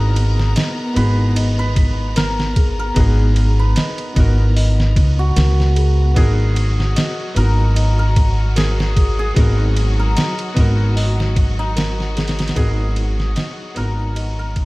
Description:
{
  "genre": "trip hop",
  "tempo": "75 BPM",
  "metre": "4/4",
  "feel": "swing 55% on 16ths",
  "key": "G# minor",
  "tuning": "A4 = 440 Hz",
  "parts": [
    { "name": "cimbalom", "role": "melody", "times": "0.0-14.7 s", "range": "D#4 to B4", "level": "-27 LUFS", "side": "equal", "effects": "tape echo" },
    { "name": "warm upright piano", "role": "accompaniment", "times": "0.0-14.7 s", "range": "B3 to A#4", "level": "-27 LUFS", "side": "equal", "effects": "harmonic tremolo, tape echo" },
    { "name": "rich studio string section", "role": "sustained chords", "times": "0.0-14.7 s", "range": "F#3 to A#5", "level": "-29 LUFS", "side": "left 1 dB", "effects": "none" },
    { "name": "worn celesta", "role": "arpeggios", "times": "0.0-14.7 s", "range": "G#4 to D#5", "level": "-31 LUFS", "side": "left 3 dB", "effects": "tape echo" },
    { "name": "upright bass", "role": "bass", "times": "0.0-14.7 s", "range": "G#1 to C#2", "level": "-16 LUFS", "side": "equal", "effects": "none" },
    { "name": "trip hop sampler-style drum kit", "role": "drums", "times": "0.2-14.7 s", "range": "hi-hat, kick drum, ride cymbal, snare drum", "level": "-20 LUFS", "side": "equal", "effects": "small room ambience" }
  ],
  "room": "small room ambience",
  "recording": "vinyl crackle",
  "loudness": "-14 LUFS",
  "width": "side -22 dB against mid",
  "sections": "0.0-14.7 A section",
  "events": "fade-out 10.4-14.7",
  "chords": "0.0 G#m7"
}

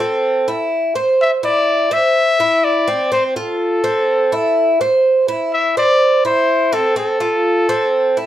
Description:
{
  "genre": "latin",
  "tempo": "125 BPM",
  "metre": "4/4",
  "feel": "straight",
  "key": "C major",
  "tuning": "A4 = 440 Hz",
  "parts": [
    { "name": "warm trumpet", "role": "melody", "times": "0.0-8.3 s", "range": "A4 to E5", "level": "-16 LUFS", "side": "left 2 dB", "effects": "none" },
    { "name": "Cuban tres", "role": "arpeggios", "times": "0.0-8.3 s", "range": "C4 to C5", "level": "-16 LUFS", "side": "right 1 dB", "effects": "none" }
  ],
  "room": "moderate large studio reverb, RT60 0.9 s",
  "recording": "none",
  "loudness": "-13 LUFS",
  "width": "side -12 dB against mid",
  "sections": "0.0-8.3 A section",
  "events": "none",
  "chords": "0.2 C6; 1.2 C; 2.2 Cadd9; 3.1 F/C; 4.1 C6; 5.0 C; 6.0 C69; 7.0 F/C"
}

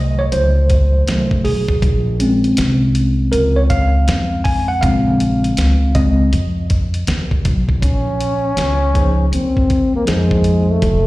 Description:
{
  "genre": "hip hop, jazz-hop",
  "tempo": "80 BPM",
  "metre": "4/4",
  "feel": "swing 64% on 16ths",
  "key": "Bb minor",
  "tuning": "A4 = 440 Hz",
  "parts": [
    { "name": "tine electric piano", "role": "accompaniment", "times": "0.0-10.8 s", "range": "Db3 to Ab5", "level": "-17 LUFS", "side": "equal", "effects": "medium tremolo, slapback echo" },
    { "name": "upright bass", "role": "bass", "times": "0.0-11.1 s", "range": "F1 to F2", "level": "-17 LUFS", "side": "equal", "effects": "none" },
    { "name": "dusty soul sampler-style drum kit", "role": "drums", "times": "0.3-11.0 s", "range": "hi-hat, kick drum, snare drum", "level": "-19 LUFS", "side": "equal", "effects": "none" },
    { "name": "mellow trombone", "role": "melody", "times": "7.8-11.1 s", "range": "Ab3 to Db4", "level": "-18 LUFS", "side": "left 1 dB", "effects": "slapback echo" }
  ],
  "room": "little or no reverb",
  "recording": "live gig heard through the venue's PA, recital hall reverb",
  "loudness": "-13 LUFS",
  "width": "side -18 dB against mid",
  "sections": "0.0-7.8 A section; 7.8-11.1 B section",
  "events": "tine electric piano solo 0.0-7.8",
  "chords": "0.0 F7b9 (rootless); 1.8 Bbm7"
}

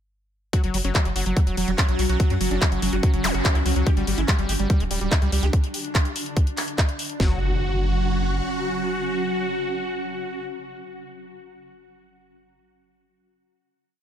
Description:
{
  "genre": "psychedelic trance",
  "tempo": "144 BPM",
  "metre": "4/4",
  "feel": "straight",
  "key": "unclear",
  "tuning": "A4 = 440 Hz",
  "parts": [
    { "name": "dense compressed supersaw", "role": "melody", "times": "0.5-10.4 s", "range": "F#3 to G4", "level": "-30 LUFS", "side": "right 1 dB", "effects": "phaser, sidechain pumping, tape echo" },
    { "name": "evolving wavetable pad", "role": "sustained chords", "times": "1.2-10.4 s", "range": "F#3 to F#4", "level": "-32 LUFS", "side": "equal", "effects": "ensemble chorus, built-in reverb, phaser, sidechain pumping" },
    { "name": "overdriven acid bass", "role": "riff", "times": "0.5-7.4 s", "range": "F#3 to A3", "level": "-31 LUFS", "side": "moving between left 9 dB and right 8 dB", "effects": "auto-pan, sidechain pumping, tape echo" },
    { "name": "drum and bass drum kit", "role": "drums", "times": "0.5-7.2 s", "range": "handclaps, hi-hat", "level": "-27 LUFS", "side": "left 1 dB", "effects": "none" },
    { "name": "garage drum kit", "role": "drums", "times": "0.5-7.3 s", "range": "kick drum, snare drum", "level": "-20 LUFS", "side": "equal", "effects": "none" },
    { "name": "granular cloud pad", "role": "texture", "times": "1.3-10.6 s", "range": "C#4 to F#5", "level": "-32 LUFS", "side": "right 1 dB", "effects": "built-in reverb, sidechain pumping" },
    { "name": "round analog bass", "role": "bass", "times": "0.6-8.4 s", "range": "D1 to F#2", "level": "-24 LUFS", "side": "equal", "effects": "none" },
    { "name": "zap and impact", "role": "sound effects", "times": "3.2-3.3, 7.2-10.5 s", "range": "none", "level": "-31 LUFS", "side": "equal", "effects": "none" }
  ],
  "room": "little or no reverb",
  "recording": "none",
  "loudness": "-20 LUFS",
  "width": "side -10 dB against mid",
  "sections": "0.5-7.2 drop; 7.2-10.5 final chord",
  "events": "drop 0.5-7.2",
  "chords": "0.5 F#5; 3.9 G5; 7.2 F#5"
}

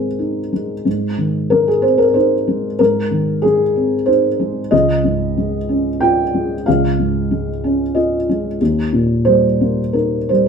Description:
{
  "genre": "neoclassical minimalist piano",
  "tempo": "93 BPM",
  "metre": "3/4",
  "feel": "rubato",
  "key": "Ab major",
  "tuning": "A4 = 440 Hz",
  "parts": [
    { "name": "felt-muted upright piano", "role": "solo", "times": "0.0-10.5 s", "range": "Db2 to G5", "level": "-14 LUFS", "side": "equal", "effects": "none" }
  ],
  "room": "wet studio reverb, RT60 0.8 s",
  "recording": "band playing live in one room",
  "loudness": "-14 LUFS",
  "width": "side -6 dB against mid",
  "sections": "0.0-10.5 A section",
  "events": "none",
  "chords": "0.0 Ab; 4.7 Dbadd9; 8.6 Eb"
}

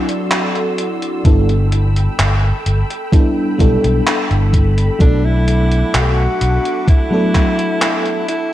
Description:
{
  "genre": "vaporwave",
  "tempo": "64 BPM",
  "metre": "4/4",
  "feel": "straight",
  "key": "unclear",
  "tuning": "A4 = 439 Hz",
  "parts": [
    { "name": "FM electric piano with soft pad layer", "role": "accompaniment", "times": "0.0-8.3 s", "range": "F#3 to A4", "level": "-19 LUFS", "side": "equal", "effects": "tremolo, analog chorus, cassette tape, analog delay" },
    { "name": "soft string machine", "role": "sustained chords", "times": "0.0-8.5 s", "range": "F#4 to E6", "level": "-26 LUFS", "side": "equal", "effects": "ensemble chorus, vintage 12-bit sampler grit" },
    { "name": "gated 80s digital drum machine", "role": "drums", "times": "0.1-8.5 s", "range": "handclaps, hi-hat", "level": "-20 LUFS", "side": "equal", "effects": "gated reverb, overdrive" },
    { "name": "fingered electric bass with an envelope filter", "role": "bass", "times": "1.2-6.6 s", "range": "G1 to B1", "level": "-14 LUFS", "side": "equal", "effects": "none" },
    { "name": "electronic kick drum", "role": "drums", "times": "1.2-7.5 s", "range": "none", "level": "-12 LUFS", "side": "equal", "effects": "overdrive" },
    { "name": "bright alto saxophone", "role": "melody", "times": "5.0-8.5 s", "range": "D4 to G4", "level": "-19 LUFS", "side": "equal", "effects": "tape echo" }
  ],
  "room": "light reverb",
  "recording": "dark, warm production",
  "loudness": "-12 LUFS",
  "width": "side -13 dB against mid",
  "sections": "0.0-8.5 A section",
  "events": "none",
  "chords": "0.0 D9; 1.3 G69; 5.0 Bm7"
}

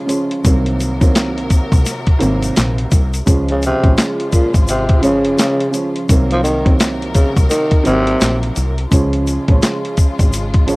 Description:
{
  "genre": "hip hop, boom-bap hip-hop",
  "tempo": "85 BPM",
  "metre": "4/4",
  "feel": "swing 61% on 16ths",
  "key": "Db major",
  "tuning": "A4 = 438 Hz",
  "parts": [
    { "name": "warm upright piano", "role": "accompaniment", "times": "0.0-10.8 s", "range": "C2 to Db4", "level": "-19 LUFS", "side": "right 2 dB", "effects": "cassette tape, high-pass filter, low-pass filter" },
    { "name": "warm studio string section", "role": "sustained chords", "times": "0.0-10.8 s", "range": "C3 to Bb4", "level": "-27 LUFS", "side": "left 2 dB", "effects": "high-pass filter, low-pass filter, cassette tape" },
    { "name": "boom bap sampler-style drum kit", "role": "drums", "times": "0.1-10.8 s", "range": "handclaps, hi-hat, kick drum, snare drum", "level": "-13 LUFS", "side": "equal", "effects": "vintage 12-bit sampler grit" },
    { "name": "tube shaker", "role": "percussion", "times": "0.1-10.8 s", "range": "none", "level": "-29 LUFS", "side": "left 4 dB", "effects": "none" },
    { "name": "deep dub fingered electric bass", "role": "bass", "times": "0.5-10.8 s", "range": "Ab1 to Db2", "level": "-19 LUFS", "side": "equal", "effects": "tube saturation" },
    { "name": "growling tenor saxophone", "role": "melody", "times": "3.5-8.4 s", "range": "Bb2 to F3", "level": "-18 LUFS", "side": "equal", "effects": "high-pass filter, low-pass filter, cassette tape" }
  ],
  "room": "light reverb",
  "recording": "home recording on cassette",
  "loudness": "-12 LUFS",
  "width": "side -23 dB against mid",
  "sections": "0.0-3.3 A section; 3.3-10.8 A section",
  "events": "none",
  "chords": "0.4 Ab7/C (rootless); 3.3 Db; 6.1 Ab7/C (rootless); 8.9 Db"
}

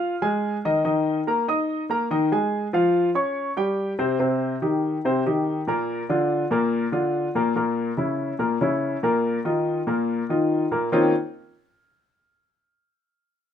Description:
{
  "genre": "jazz",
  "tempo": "143 BPM",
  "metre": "4/4",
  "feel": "straight",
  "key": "Eb mixolydian",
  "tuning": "A4 = 439 Hz",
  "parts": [
    { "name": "warm baby grand piano", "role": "solo", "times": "0.0-11.1 s", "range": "Bb2 to F6", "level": "-21 LUFS", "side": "left 1 dB", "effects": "none" }
  ],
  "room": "light reverb",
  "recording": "minimal, uncompressed stereo recording",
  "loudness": "-21 LUFS",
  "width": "side -9 dB against mid",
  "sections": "0.0-4.2 A section; 4.2-10.9 B section; 10.9-12.6 C section",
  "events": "none",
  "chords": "0.0 N.C.; 0.8 Eb5; 2.5 Db/F; 3.4 C5; 4.2 Eb6; 5.9 Bb; 7.6 Bbdim; 9.2 Bbsus4; 10.9 Ebsus2"
}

